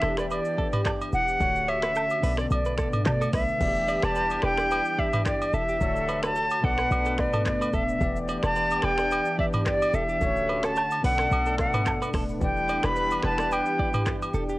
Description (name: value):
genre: afrobeats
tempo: 109 BPM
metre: 4/4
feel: swing 55% on 16ths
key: E dorian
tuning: A4 = 443 Hz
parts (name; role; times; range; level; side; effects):
- bright concert flute; melody; 0.0-14.1 s; D5 to B5; -26 LUFS; equal; cassette tape
- bell-like tine electric piano; accompaniment; 0.0-14.6 s; B2 to D5; -35 LUFS; left 2 dB; auto-pan, cassette tape
- lush unison pad; sustained chords; 0.0-14.6 s; D3 to G4; -34 LUFS; equal; chorus, cassette tape
- direct-recorded clean electric guitar; riff; 0.0-14.6 s; G4 to D5; -36 LUFS; right 2 dB; cassette tape
- short 808-style bass; bass; 0.0-14.6 s; D1 to B2; -30 LUFS; equal; none
- afro-pop drum kit; drums; 0.0-14.6 s; crash cymbal, finger snaps, handclaps, hi-hat, kick drum, rim click, shaker, toms; -29 LUFS; equal; overdrive, cassette tape
- agogo bells and woodblock; percussion; 0.3-14.3 s; none; -34 LUFS; right 2 dB; none
- warm horn section; second line; 3.6-14.3 s; E3 to D5; -33 LUFS; left 1 dB; cassette tape
room: light reverb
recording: home recording on cassette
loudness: -23 LUFS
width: side -19 dB against mid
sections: 0.0-3.6 A section; 3.6-14.6 B section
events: none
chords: 0.0 Em7; 1.4 Dmaj7; 2.2 Bm7; 3.6 Em7; 5.8 Dmaj7; 6.6 Bm7; 8.0 Em7; 10.2 Dmaj7; 11.0 Bm7; 12.4 Em7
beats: 0.30 0.85 | 1.41 1.96 2.51 3.06 | 3.61 4.16 4.71 5.26 | 5.81 6.36 6.91 7.46 | 8.01 8.56 9.11 9.66 | 10.21 10.76 11.31 11.86 | 12.41 12.96 13.52 14.07